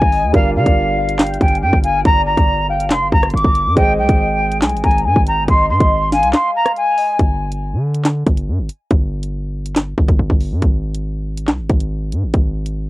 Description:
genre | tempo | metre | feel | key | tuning
hip hop, drill | 140 BPM | 4/4 | half-time | G phrygian | A4 = 439 Hz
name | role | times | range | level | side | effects
jazz flute | melody | 0.0-7.2 s | F5 to D6 | -16 LUFS | equal | cassette tape, tape echo
warm velvety synth lead | second line | 0.0-7.2 s | D5 to Bb5 | -24 LUFS | left 3 dB | chorus, cassette tape, tape echo
warm grand piano | accompaniment | 0.0-7.2 s | G3 to Eb5 | -25 LUFS | right 2 dB | cassette tape
hard-hitting 808-style bass | bass | 0.0-12.9 s | F1 to D3 | -19 LUFS | equal | none
drill drum kit | drums | 0.0-12.8 s | handclaps, hi-hat, kick drum, rim click, snare drum | -15 LUFS | equal | none
room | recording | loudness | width
little or no reverb | home recording on cassette | -13 LUFS | side -17 dB against mid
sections
0.0-7.2 A section; 7.2-12.9 B section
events
break 6.3-7.2, 7.2-12.9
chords
0.3 Gm7; 3.8 Ab; 7.2 G5; 10.6 N.C.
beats
| 0.34 0.77 1.19 1.62 | 2.05 2.48 2.91 3.34 | 3.77 4.19 4.62 5.05 | 5.48 5.91 6.34 6.77 | 7.19 7.62 8.05 8.48 | 8.91 9.34 9.77 10.19 | 10.62 11.05 11.48 11.91 | 12.34 12.77

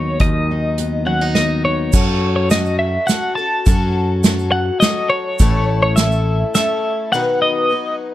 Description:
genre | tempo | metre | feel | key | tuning
indie folk with a building arrangement | 104 BPM | 3/4 | straight | unclear | A4 = 440 Hz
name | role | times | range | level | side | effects
twelve-string electric guitar | melody | 0.0-8.0 s | C#5 to A5 | -19 LUFS | equal | tremolo
fingerpicked steel-string acoustic guitar | accompaniment | 0.0-1.9 s | D#3 to D#4 | -22 LUFS | left 2 dB | none
picked electric bass | bass | 0.0-6.4 s | A1 to F#2 | -19 LUFS | equal | none
unplugged drum kit | drums | 0.2-6.7 s | crash cymbal, hi-hat, kick drum, snare drum | -16 LUFS | right 1 dB | none
picked twelve-string acoustic guitar | accompaniment | 1.9-8.1 s | A2 to B4 | -22 LUFS | left 5 dB | none
tube shaker | percussion | 1.9-6.7 s | none | -28 LUFS | right 14 dB | none
room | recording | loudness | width
light reverb | dark, warm production | -14 LUFS | side -14 dB against mid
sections
0.0-1.9 A section; 1.9-8.1 B section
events
none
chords
0.0 B/D#; 1.9 F#m; 5.4 A; 7.1 B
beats
| 0.21 0.79 1.36 | 1.94 2.52 3.09 | 3.67 4.25 4.82 | 5.40 5.98 6.55 | 7.13 7.70

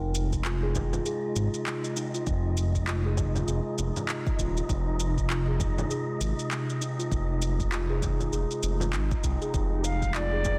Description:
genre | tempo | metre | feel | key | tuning
organic downtempo | 99 BPM | 4/4 | swing 60% on 16ths | F minor | A4 = 440 Hz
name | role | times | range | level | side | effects
warbly tape-like pad | sustained chords | 0.0-10.6 s | C3 to G5 | -37 LUFS | equal | chorus, built-in reverb, vintage 12-bit sampler grit, sidechain pumping
smooth synth bass | bass | 0.0-10.6 s | Eb1 to C2 | -31 LUFS | equal | sidechain pumping
wind-like tuned noise texture | texture | 0.3-10.6 s | Eb4 to G5 | -44 LUFS | equal | built-in reverb
electronic shaker and handclaps | drums | 0.1-10.6 s | none | -38 LUFS | equal | none
electronic kick drum | drums | 0.3-10.6 s | none | -34 LUFS | equal | none
steel tongue drum | arpeggios | 0.5-10.6 s | Eb4 to Ab4 | -37 LUFS | equal | tape echo
frame drum | percussion | 0.8-10.6 s | none | -38 LUFS | equal | none
reedy Native American-style cedar flute | melody | 9.8-10.6 s | G4 to F5 | -33 LUFS | equal | none
room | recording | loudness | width
light reverb, small room ambience | dense, heavily limited modern master | -28 LUFS | mono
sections
0.0-10.6 A section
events
none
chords
0.0 Fm7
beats
0.45 1.05 1.66 | 2.27 2.87 3.48 4.08 | 4.69 5.30 5.90 6.51 | 7.12 7.72 8.33 8.93 | 9.54 10.14

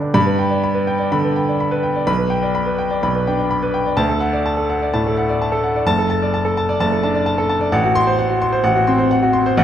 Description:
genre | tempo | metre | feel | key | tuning
classical, virtuoso piano study | 127 BPM | 4/4 | rubato | G major | A4 = 440 Hz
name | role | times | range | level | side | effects
clear baby grand piano | solo | 0.0-9.6 s | F#1 to G6 | -15 LUFS | equal | none
room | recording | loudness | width
moderate concert hall reverb, RT60 1.9 s | dark, warm production | -15 LUFS | side -10 dB against mid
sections
0.1-9.6 A section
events
none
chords
0.1 G; 2.1 G/B; 4.0 D; 5.9 D/F#; 7.7 F#dim/A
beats
| 0.14 0.63 1.11 1.59 | 2.07 2.55 3.03 3.51 | 3.98 4.45 4.92 5.39 | 5.86 6.33 6.79 7.26 | 7.72 8.19 8.65 9.11 | 9.58

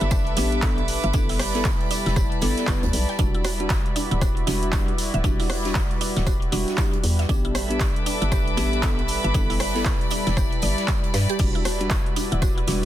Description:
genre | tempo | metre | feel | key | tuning
deep house | 117 BPM | 4/4 | swing 61% on 16ths | E minor | A4 = 440 Hz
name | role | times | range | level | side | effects
warm analog pad | sustained chords | 0.0-12.9 s | G3 to D5 | -32 LUFS | right 2 dB | chorus, sidechain pumping
mallet-like synth pluck | arpeggios | 0.0-12.7 s | D4 to G5 | -33 LUFS | right 3 dB | analog chorus, sidechain pumping, ping-pong delay
hollow knocking FM bass | bass | 0.0-12.9 s | D1 to G2 | -26 LUFS | equal | sidechain pumping
deep house drum kit | drums | 0.0-12.8 s | crash cymbal, handclaps, hi-hat, rim click | -30 LUFS | right 1 dB | overdrive
dark studio string section | texture | 0.0-12.9 s | G3 to D6 | -30 LUFS | equal | sidechain pumping
electronic kick drum | drums | 0.1-12.5 s | none | -24 LUFS | equal | overdrive
natural country drum kit | drums | 0.1-12.8 s | hi-hat, snare drum, tambourine | -36 LUFS | right 1 dB | high-pass filter on hats, soft clipping on snare, high-pass filter on snare, high-pass filter on perc, high-pass filter on room
bell-like tine electric piano | stabs | 0.4-12.9 s | G3 to B4 | -29 LUFS | left 1 dB | sidechain pumping, ping-pong delay
room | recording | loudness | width
small room ambience | dense, heavily limited modern master | -20 LUFS | side -12 dB against mid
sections
0.0-12.9 A section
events
none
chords
0.0 A9sus4; 1.1 G6; 3.2 Em9; 7.3 A9sus4; 9.3 G6; 11.4 Em9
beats
0.11 0.63 | 1.14 1.65 2.16 2.68 | 3.19 3.70 4.21 4.73 | 5.24 5.75 6.27 6.78 | 7.29 7.80 8.32 8.83 | 9.34 9.86 10.37 10.88 | 11.39 11.91 12.42

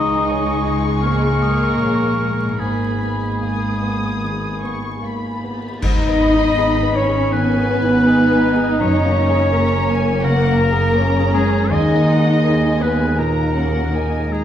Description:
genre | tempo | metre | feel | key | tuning
cinematic, emotional film score for orchestra | 73-84 BPM | 4/4 | rubato | G# minor | A4 = 439 Hz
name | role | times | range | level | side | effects
muted studio violin section | melody | 0.0-14.4 s | F#5 to D#6 | -27 LUFS | left 3 dB | none
clear oboe | second line | 0.0-5.0 s | G#4 to D#5 | -24 LUFS | equal | none
concert flute | second line | 0.0-5.4 s | G#5 to D#6 | -30 LUFS | left 1 dB | none
muted studio violin section | second line | 0.0-14.4 s | G#4 to D#5 | -26 LUFS | left 1 dB | none
dark concert grand piano | accompaniment | 0.0-14.4 s | C#2 to C#5 | -25 LUFS | left 2 dB | none
muted studio viola section | accompaniment | 0.0-14.4 s | G#3 to D#4 | -24 LUFS | right 1 dB | none
dark French horn section | sustained chords | 0.0-5.0 s | G#3 to D#4 | -27 LUFS | left 5 dB | none
concert harp | arpeggios | 0.0-14.4 s | F#2 to A#5 | -29 LUFS | left 4 dB | none
muted studio cello section | bass | 0.0-14.4 s | G#3 to D#4 | -22 LUFS | right 1 dB | none
muted studio double bass section | bass | 0.0-14.4 s | F#1 to D#2 | -22 LUFS | right 1 dB | none
cymbal swell, clash cymbals and concert bass drum | percussion | 2.6-7.3 s | none | -24 LUFS | equal | none
bright clarinet | second line | 5.8-14.4 s | G#4 to D#5 | -22 LUFS | left 1 dB | none
room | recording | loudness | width
moderate scoring stage reverb, RT60 1.7 s | dark, warm production, vinyl crackle | -15 LUFS | side -10 dB against mid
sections
0.0-5.8 A section; 5.8-14.4 B section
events
band accent 5.8-6.6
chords
0.0 C#madd9; 2.6 G#madd9; 5.8 G#m; 8.8 F#add9; 11.7 D#sus4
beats
0.31 1.04 1.81 | 2.61 3.42 4.23 5.03 | 5.82 6.57 7.33 8.07 | 8.81 9.52 10.24 10.95 | 11.71 12.44 13.17 13.92

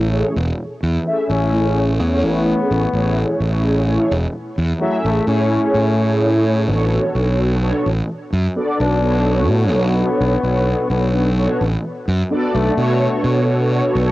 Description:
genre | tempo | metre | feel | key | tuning
vaporwave | 64 BPM | 4/4 | straight | B dorian | A4 = 441 Hz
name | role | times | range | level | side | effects
mellow synth brass | accompaniment | 0.0-14.1 s | A3 to E5 | -19 LUFS | equal | ensemble chorus, cassette tape, tape echo
fuzz fingered electric bass | bass | 0.0-14.1 s | E1 to B2 | -18 LUFS | equal | overdrive, tube saturation
mellow flugelhorn | melody | 1.3-13.2 s | F#3 to D4 | -23 LUFS | left 4 dB | cassette tape, tape echo
room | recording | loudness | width
light reverb | home recording on cassette | -15 LUFS | side -17 dB against mid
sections
0.0-14.1 A section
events
none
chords
0.0 Amaj7; 7.2 Bm9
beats
0.59 1.52 2.46 | 3.40 4.34 5.28 6.21 | 7.15 8.09 9.03 9.96 | 10.90 11.84 12.78 13.71

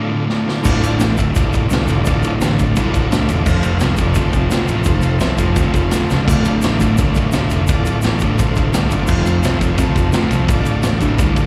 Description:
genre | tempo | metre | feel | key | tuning
garage rock duo or trio | 171 BPM | 4/4 | straight | D minor | A4 = 440 Hz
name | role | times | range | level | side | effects
combo organ | sustained chords | 0.0-11.5 s | F4 to E5 | -28 LUFS | equal | none
fuzz guitar | riff | 0.0-11.5 s | D2 to F3 | -20 LUFS | equal | distortion
vintage drum kit | drums | 0.3-11.4 s | crash cymbal, kick drum, ride cymbal, snare drum | -22 LUFS | equal | none
egg shaker | percussion | 0.6-11.4 s | none | -38 LUFS | equal | none
fuzz picked electric bass | bass | 0.7-11.5 s | D1 to D2 | -21 LUFS | equal | overdrive
room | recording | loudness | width
light reverb | live gig heard through the venue's PA, recital hall reverb | -16 LUFS | mono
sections
0.6-11.5 A section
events
break 0.0-0.6; drum fill 0.3-0.6, 6.1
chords
0.0 Dm; 3.5 F; 6.3 Dm; 9.1 F; 10.5 Dm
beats
0.29 | 0.64 0.99 1.35 1.70 | 2.05 2.40 2.75 3.10 | 3.46 3.81 4.16 4.51 | 4.86 5.22 5.57 5.92 | 6.27 6.62 6.98 7.33 | 7.68 8.03 8.38 8.73 | 9.09 9.44 9.79 10.14 | 10.49 10.84 11.19

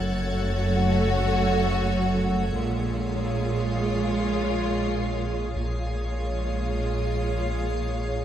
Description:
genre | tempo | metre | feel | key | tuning
cinematic, suspense film score | free time | none | none | unclear | A4 = 440 Hz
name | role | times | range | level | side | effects
rich studio violin section | melody | 0.0-8.2 s | C#5 | -35 LUFS | left 6 dB | none
rich symphonic violin section | second line | 0.0-8.2 s | E#4 to F#4 | -32 LUFS | left 3 dB | none
rich symphonic viola section | accompaniment | 0.0-8.2 s | G#3 to A3 | -31 LUFS | right 2 dB | none
icy glass pad | sustained chords | 0.0-8.2 s | G#4 to F#5 | -33 LUFS | right 1 dB | chorus, built-in reverb
rich symphonic double bass section | bass | 0.0-8.2 s | F#1 to A#1 | -30 LUFS | right 2 dB | none
warm studio cello section | bass | 0.0-8.2 s | F#2 to A#2 | -30 LUFS | right 3 dB | none
punchy sub bass | drone | 0.0-8.2 s | F#1 to A#1 | -31 LUFS | left 1 dB | none
rich studio violin section | texture | 0.0-2.2 s | F#6 to A6 | -39 LUFS | left 2 dB | none
room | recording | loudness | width
moderate scoring stage reverb, RT60 1.7 s | none | -23 LUFS | side -10 dB against mid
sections
0.0-8.2 A section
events
none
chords
0.0 F#m; 2.6 A#m7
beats
free time

